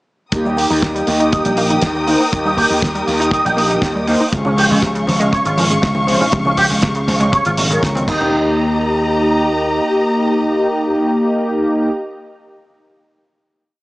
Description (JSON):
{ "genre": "nu-disco, nu disco", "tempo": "120 BPM", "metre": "4/4", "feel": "straight", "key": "Eb mixolydian", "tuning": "A4 = 440 Hz", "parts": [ { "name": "mellow synth brass", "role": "accompaniment", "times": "0.3-11.9 s", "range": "F3 to C5", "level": "-17 LUFS", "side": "equal", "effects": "chorus, sidechain pumping, slapback echo" }, { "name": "warm studio string section", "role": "sustained chords", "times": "0.3-11.9 s", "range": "G4 to Eb6", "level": "-21 LUFS", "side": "left 1 dB", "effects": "sidechain pumping" }, { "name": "analog pluck", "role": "arpeggios", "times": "0.3-8.5 s", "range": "C3 to Eb4", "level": "-23 LUFS", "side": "right 1 dB", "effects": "chorus, cassette tape, sidechain pumping, analog delay" }, { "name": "slap bass", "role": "bass", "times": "0.3-9.8 s", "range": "Ab1 to Eb2", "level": "-21 LUFS", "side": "equal", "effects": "none" }, { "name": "damped 70s drum kit", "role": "drums", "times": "0.3-8.2 s", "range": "crash cymbal, hi-hat, shaker, snare drum", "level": "-23 LUFS", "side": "right 1 dB", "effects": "studio reverb" }, { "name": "kick drum", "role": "drums", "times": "0.3-8.2 s", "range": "none", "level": "-20 LUFS", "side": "equal", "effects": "studio reverb" }, { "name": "electric guitar with an envelope filter", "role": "riff", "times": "0.5-8.5 s", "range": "Db3 to Eb5", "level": "-19 LUFS", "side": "right 1 dB", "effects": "ensemble chorus, low-pass filter" }, { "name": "congas", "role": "percussion", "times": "4.3-8.3 s", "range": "none", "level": "-27 LUFS", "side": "left 1 dB", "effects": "none" } ], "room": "moderate lush hall reverb, RT60 2.1 s", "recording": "small speaker sound", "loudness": "-13 LUFS", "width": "side -20 dB against mid", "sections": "0.3-8.3 groove; 8.3-12.3 final hit", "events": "filter sweep on clean electric guitar 0.3-8.3", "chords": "0.3 Eb; 4.3 Dbmaj7; 8.1 Eb" }